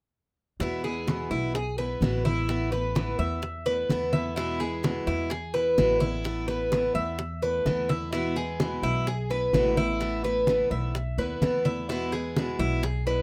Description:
latin, Cuban son and guajira; 128 BPM; 4/4; straight; E major; A4 = 441 Hz
picked steel-string acoustic guitar; accompaniment; 0.6-13.2 s; B2 to E4; -35 LUFS; equal
Cuban tres; arpeggios; 0.6-13.2 s; E4 to E5; -30 LUFS; equal
upright bass; bass; 0.6-13.2 s; A1 to E2; -34 LUFS; equal
bongos; percussion; 0.6-13.2 s; -38 LUFS; equal
congas; percussion; 0.6-13.2 s; -32 LUFS; equal
moderate studio ambience, RT60 0.5 s; rough home demo mix; -27 LUFS; mono
0.6-13.2 A section
0.6 E; 2.5 Asus2; 4.4 E; 6.3 Asus2; 8.1 E; 10.0 Asus2; 11.9 E
| 0.60 1.08 1.55 2.02 | 2.49 2.96 3.43 3.90 | 4.37 4.84 5.31 5.78 | 6.25 6.72 7.19 7.66 | 8.13 8.60 9.07 9.54 | 10.01 10.48 10.95 11.42 | 11.89 12.36 12.83

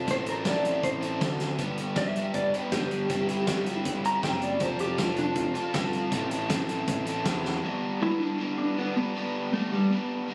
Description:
indie rock; 159 BPM; 4/4; straight; G major; A4 = 440 Hz
overdriven electric guitar; riff; 0.0-10.3 s; G2 to A4; -33 LUFS; equal
growling picked electric bass; bass; 0.0-7.6 s; F1 to E2; -35 LUFS; equal; overdrive
mellow electric guitar; melody; 0.1-10.3 s; G3 to Bb5; -32 LUFS; equal; spring reverb, tape echo
loose indie drum kit; drums; 0.1-7.5 s; hi-hat, kick drum, snare drum; -35 LUFS; equal
light reverb; recorded on a phone in the room, club reverb; -28 LUFS; mono
0.0-7.6 A section; 7.6-10.3 B section
clean electric guitar solo 0.0-7.6; drum fill 7.4
0.1 Am; 1.6 G; 3.1 C/G; 4.6 F; 6.1 Am; 7.6 G
| 0.08 0.46 0.83 1.21 | 1.59 1.97 2.34 2.72 | 3.10 3.48 3.85 4.23 | 4.61 4.99 5.37 5.74 | 6.12 6.50 6.88 7.25 | 7.63 8.01 8.39 8.77 | 9.14 9.52 9.90 10.28

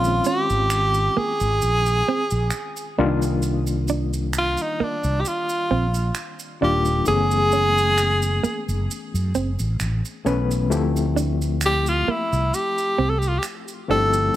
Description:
R&B, neo-soul; 66 BPM; 4/4; swing 53% on 16ths; A4 = 440 Hz
breathy tenor saxophone; melody; 0.0-14.4 s; D4 to A4; -21 LUFS; right 1 dB
overdriven reed electric piano; accompaniment; 0.0-14.4 s; D3 to B4; -27 LUFS; left 6 dB; fast tremolo
mellow fretless electric bass; bass; 0.0-14.3 s; Eb1 to F#2; -23 LUFS; equal; analog chorus
maracas and finger snaps; percussion; 0.0-14.3 s; -33 LUFS; right 4 dB
hollow-body jazz guitar; second line; 0.3-14.1 s; Bb3 to D4; -25 LUFS; right 6 dB
light reverb, small room ambience; -19 LUFS; side -13 dB against mid
0.0-14.4 A section
0.0 Bbm11; 3.0 Cm11; 7.1 F#m11; 10.7 Dm11
0.70 1.61 2.52 | 3.43 4.34 5.25 6.16 | 7.07 7.97 8.88 9.79 | 10.70 11.61 12.52 13.43 | 14.34

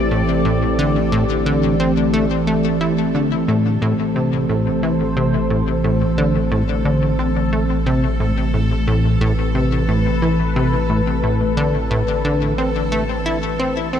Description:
ambient, sequencer-driven space music; 89 BPM; 4/4; straight; A minor; A4 = 440 Hz
sweeping resonant pad; sustained chords; 0.0-14.0 s; E3 to D5; -20 LUFS; equal; chorus
warm sub bass; bass; 0.0-14.0 s; A1; -24 LUFS; equal
bubbling stepped-filter texture; texture; 0.0-14.0 s; A4; -30 LUFS; equal; chorus, built-in reverb
plucky analog bass; riff; 0.1-14.0 s; A2 to E4; -19 LUFS; left 1 dB; ping-pong delay
wet huge ambient reverb, RT60 7.5 s; -16 LUFS; side -9 dB against mid
0.0-14.0 A section
0.0 Am7
0.11 | 0.79 1.46 2.13 2.81 | 3.48 4.16 4.83 5.50 | 6.18 6.85 7.53 8.20 | 8.88 9.55 10.22 10.90 | 11.57 12.25 12.92 13.60

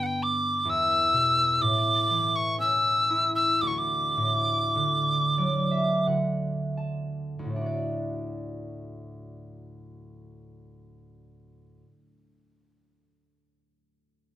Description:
celtic folk; 38-66 BPM; 3/4; rubato; D major; A4 = 439 Hz
breathy bright tin whistle; melody; 0.0-6.1 s; F#5 to E6; -23 LUFS; equal
concert harp; accompaniment; 0.0-12.1 s; D2 to A5; -29 LUFS; equal
moderate studio reverb, RT60 0.5 s; band playing live in one room; -23 LUFS; side -12 dB against mid
0.0-7.5 A section; 7.5-12.0 B section
slowing down 0.7-7.5; harp fill 4.8-7.5
0.0 G; 0.7 E5; 1.6 A; 3.6 D
| 0.66 1.61 2.59 | 3.62 4.76 6.06 | 7.54 9.05 10.54

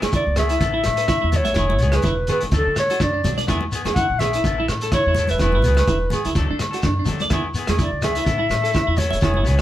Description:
highlife guitar band; 125 BPM; 4/4; swing 55% on 16ths; E mixolydian; A4 = 440 Hz
electric guitar at the edge of break-up; accompaniment; 0.0-9.6 s; F#3 to A4; -31 LUFS; left 4 dB
clean electric guitar; arpeggios; 0.0-9.6 s; D4 to E5; -26 LUFS; right 4 dB
upright bass; bass; 0.0-9.6 s; E1 to D3; -23 LUFS; equal
vintage drum kit; drums; 0.0-9.6 s; hi-hat, kick drum, rim click; -24 LUFS; equal
agogo bells; percussion; 0.0-9.6 s; -30 LUFS; equal
congas; percussion; 0.0-9.6 s; -29 LUFS; left 1 dB
shekere; percussion; 0.0-9.6 s; -30 LUFS; left 2 dB
breathy clarinet; melody; 0.2-9.6 s; A4 to F#5; -22 LUFS; left 1 dB
light reverb; band playing live in one room; -17 LUFS; side -13 dB against mid
0.0-9.6 A section
0.0 E; 0.6 Asus2; 1.6 E; 2.5 D; 3.5 E; 4.4 Asus2; 5.4 E; 6.4 D; 7.3 E; 8.3 Asus2
0.14 0.61 1.09 | 1.57 2.05 2.53 3.00 | 3.48 3.96 4.44 4.92 | 5.40 5.88 6.36 6.83 | 7.31 7.79 8.27 8.75 | 9.23

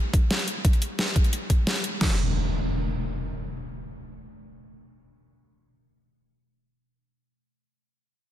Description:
dark technical drum and bass; 176 BPM; 4/4; straight
dubstep drum kit; drums; 0.1-2.1 s; crash cymbal, kick drum, snare drum; -22 LUFS; equal; overdrive
dubstep drum kit; drums; 0.1-1.9 s; hi-hat, snare drum; -28 LUFS; equal; overdrive
impact; sound effects; 2.0-6.2 s; -28 LUFS; equal
light reverb; dense, heavily limited modern master; -23 LUFS; side -12 dB against mid
0.0-2.0 A section; 2.0-4.7 B section
0.31 | 0.65 0.99 1.33 1.67 | 2.01 2.35 2.69 3.03 | 3.37 3.71 4.06 4.40

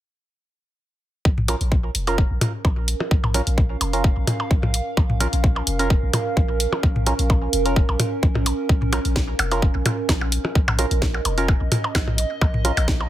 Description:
minimal techno; 129 BPM; 4/4; swing 54% on 16ths; Bb minor; A4 = 441 Hz
punchy sub bass; bass; 1.3-13.1 s; F1 to Bb1; -24 LUFS; equal; sidechain pumping
electronic kick drum; drums; 1.3-13.0 s; -19 LUFS; equal
warbly tape-like pad; texture; 2.6-13.1 s; Db4 to F5; -28 LUFS; right 3 dB; chorus, built-in reverb, phaser, sidechain pumping
electronic toms and percussion blips; percussion; 1.4-13.1 s; -24 LUFS; equal; overdrive, digital delay
percussive organ stab; stabs; 1.5-12.7 s; Db4 to Bb4; -28 LUFS; right 3 dB; chorus, phaser, cassette tape, digital delay
garage drum kit; drums; 1.5-13.0 s; hi-hat, snare drum; -26 LUFS; equal
digital ambience; -18 LUFS; side -13 dB against mid
1.3-13.1 A section
1.3 Bbm
| 1.25 1.72 2.18 2.65 | 3.11 3.58 4.04 4.51 | 4.97 5.44 5.90 6.37 | 6.83 7.30 7.76 8.23 | 8.69 9.16 9.62 10.09 | 10.55 11.02 11.48 11.95 | 12.41 12.88

